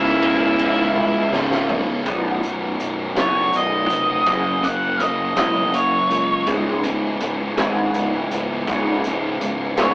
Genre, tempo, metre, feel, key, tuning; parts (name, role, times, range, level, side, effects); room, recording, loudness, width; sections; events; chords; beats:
quiet-loud alternative rock; 54 BPM (dotted quarters); 6/8; straight; B major; A4 = 440 Hz
octave-fuzz lead guitar; melody; 0.0-6.5, 9.8-9.9 s; E4 to F#5; -19 LUFS; equal; distortion
fuzz guitar; riff; 0.0-2.1 s; C#2 to C#3; -22 LUFS; equal; distortion
thick fuzz guitar; riff; 0.0-9.9 s; B1 to F#4; -24 LUFS; equal; distortion
fuzz fingered electric bass; bass; 0.0-9.9 s; B0 to C#2; -25 LUFS; equal; overdrive
raw garage drum kit; drums; 0.2-9.9 s; hi-hat, kick drum, ride cymbal, snare drum, toms; -26 LUFS; equal
electric guitar through a small old amp; arpeggios; 2.1-9.9 s; B1 to F#3; -24 LUFS; equal; phaser
moderate booth ambience, RT60 0.3 s; rough rehearsal-room recording, AM radio sound; -17 LUFS; side -28 dB against mid
0.0-2.1 A section; 2.1-9.9 B section
drum fill 1.0-2.1; lead electric guitar solo 2.1-9.9
0.0 C#m; 2.1 B; 4.3 F#; 6.5 C#m
0.96 | 2.06 3.16 | 4.27 5.37 | 6.47 7.57 | 8.67 9.78